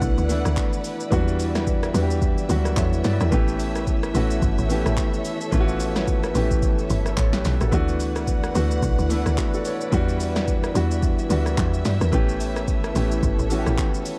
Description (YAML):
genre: amapiano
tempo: 109 BPM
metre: 4/4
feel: swing 58% on 16ths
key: unclear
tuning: A4 = 439 Hz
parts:
  - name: warm grand piano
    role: accompaniment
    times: 0.0-14.2 s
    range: E3 to E5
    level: -28 LUFS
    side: equal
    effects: none
  - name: warm studio string section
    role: sustained chords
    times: 0.0-14.2 s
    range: E4 to F#5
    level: -34 LUFS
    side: equal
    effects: sidechain pumping
  - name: woody log drum bass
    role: bass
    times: 0.0-13.8 s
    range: G1 to G2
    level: -26 LUFS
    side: equal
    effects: none
  - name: deep house drum kit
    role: drums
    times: 0.0-14.2 s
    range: handclaps, hi-hat, kick drum, rim click, shaker, snare drum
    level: -27 LUFS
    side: equal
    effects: overdrive
room: digital ambience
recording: dark, warm production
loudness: -22 LUFS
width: mono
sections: 0.0-14.2 A section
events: grand piano fill 2.5-3.3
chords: 0.0 D69; 1.1 Em7; 3.3 A7; 7.7 D69; 9.9 Em7; 12.1 A7